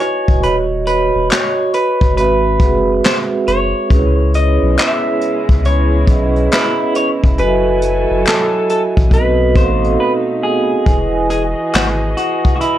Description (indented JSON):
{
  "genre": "lo-fi hip hop",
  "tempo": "69 BPM",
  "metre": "4/4",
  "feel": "swing 65% on 16ths",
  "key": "E major",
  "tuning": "A4 = 441 Hz",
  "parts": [
    { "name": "electric guitar through a small old amp", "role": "melody", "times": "0.0-12.8 s", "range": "E4 to E5", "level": "-18 LUFS", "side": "left 1 dB", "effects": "low-pass filter, analog delay" },
    { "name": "vibraphone with soft mallets", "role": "accompaniment", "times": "0.0-12.8 s", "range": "F#3 to B5", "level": "-17 LUFS", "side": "right 4 dB", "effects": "cassette tape, low-pass filter" },
    { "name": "vintage brush drum kit", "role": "drums", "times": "0.0-12.8 s", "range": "handclaps, hi-hat, kick drum, snare drum", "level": "-15 LUFS", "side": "left 1 dB", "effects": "none" },
    { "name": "soft dub sub bass", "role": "bass", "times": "0.3-12.1 s", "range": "D1 to C#2", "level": "-17 LUFS", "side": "left 1 dB", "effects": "none" },
    { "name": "finger snap", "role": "percussion", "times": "1.3-12.0 s", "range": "none", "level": "-24 LUFS", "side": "left 7 dB", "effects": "none" },
    { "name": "warm chamber string section", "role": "sustained chords", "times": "3.9-12.8 s", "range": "B2 to G#5", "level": "-25 LUFS", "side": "left 1 dB", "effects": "low-pass filter" }
  ],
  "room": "light reverb",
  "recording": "cassette tape",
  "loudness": "-12 LUFS",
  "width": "side -12 dB against mid",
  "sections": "0.0-10.9 A section; 10.9-12.8 B section",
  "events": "break 10.0-10.9",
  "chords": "0.4 Badd9/D#; 2.2 G#7alt; 3.9 C#m7; 7.4 F#m9; 9.1 B7b9; 10.9 Emaj9"
}